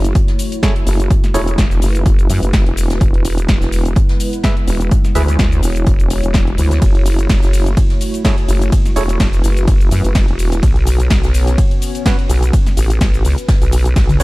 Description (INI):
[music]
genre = bass house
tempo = 126 BPM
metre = 4/4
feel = swing 55% on 16ths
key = F# minor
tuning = A4 = 440 Hz
[part]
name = dark analog pad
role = sustained chords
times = 0.0-14.2 s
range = G#3 to C#5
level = -24 LUFS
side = equal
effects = chorus, sidechain pumping
[part]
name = vowel-sweep wobble bass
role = bass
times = 0.0-14.2 s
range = E1 to F#2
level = -15 LUFS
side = equal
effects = chorus, tube saturation, sidechain pumping
[part]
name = house drum kit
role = drums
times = 0.0-14.2 s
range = hi-hat, ride cymbal, shaker, snare drum, toms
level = -23 LUFS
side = equal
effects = none
[part]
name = electronic kick drum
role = drums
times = 0.2-14.1 s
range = none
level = -14 LUFS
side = equal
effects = none
[part]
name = soft brush drum kit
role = drums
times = 0.2-14.2 s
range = hi-hat, snare drum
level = -33 LUFS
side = left 2 dB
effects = none
[part]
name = percussive organ stab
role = stabs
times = 0.6-1.4, 4.4-5.2, 8.2-9.0, 12.1-14.2 s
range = C#4 to E5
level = -24 LUFS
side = right 3 dB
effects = chorus, sidechain pumping, dub echo
[sound]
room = little or no reverb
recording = dark, warm production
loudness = -12 LUFS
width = side -20 dB against mid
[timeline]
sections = 0.0-14.2 A section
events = drum fill 14.0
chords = 0.0 F#m7; 3.0 E; 6.8 F#m7; 10.6 Bsus2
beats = 0.15 0.63 | 1.10 1.58 2.06 2.53 | 3.01 3.48 3.96 4.44 | 4.91 5.39 5.87 6.34 | 6.82 7.29 7.77 8.25 | 8.72 9.20 9.68 10.15 | 10.63 11.10 11.58 12.06 | 12.53 13.01 13.48 13.96